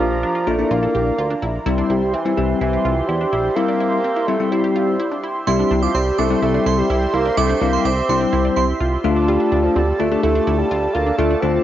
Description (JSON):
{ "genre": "synth-pop", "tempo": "126 BPM", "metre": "4/4", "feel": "straight", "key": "unclear", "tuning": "A4 = 439 Hz", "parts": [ { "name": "mellow bassoon", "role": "melody", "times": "0.0-11.6 s", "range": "E3 to C4", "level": "-21 LUFS", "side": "right 2 dB", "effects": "cassette tape, analog delay" }, { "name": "bell-like tine electric piano", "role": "accompaniment", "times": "0.0-11.6 s", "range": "G3 to G4", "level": "-21 LUFS", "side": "left 6 dB", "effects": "cassette tape" }, { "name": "warm analog pad", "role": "sustained chords", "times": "0.0-11.6 s", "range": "F3 to C6", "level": "-25 LUFS", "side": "right 1 dB", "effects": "chorus, phaser, cassette tape" }, { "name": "analog pluck", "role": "arpeggios", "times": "0.0-11.6 s", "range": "C4 to A4", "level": "-27 LUFS", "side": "right 2 dB", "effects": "chorus, phaser, cassette tape, analog delay" }, { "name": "chorused synth bass", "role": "bass", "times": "0.0-11.6 s", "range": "Bb1 to E2", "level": "-22 LUFS", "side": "right 1 dB", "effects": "none" }, { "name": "glassy synth bell", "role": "second line", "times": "5.5-8.6 s", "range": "C6 to D6", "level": "-26 LUFS", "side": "right 8 dB", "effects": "chorus, cassette tape, analog delay" } ], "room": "moderate spring reverb, RT60 2.4 s", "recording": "home recording on cassette, nothing above 7.5 kHz", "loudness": "-16 LUFS", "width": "side -12 dB against mid", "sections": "0.0-5.5 A section; 5.5-11.6 B section", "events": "none", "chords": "0.0 Bb; 1.7 C; 9.0 Dm" }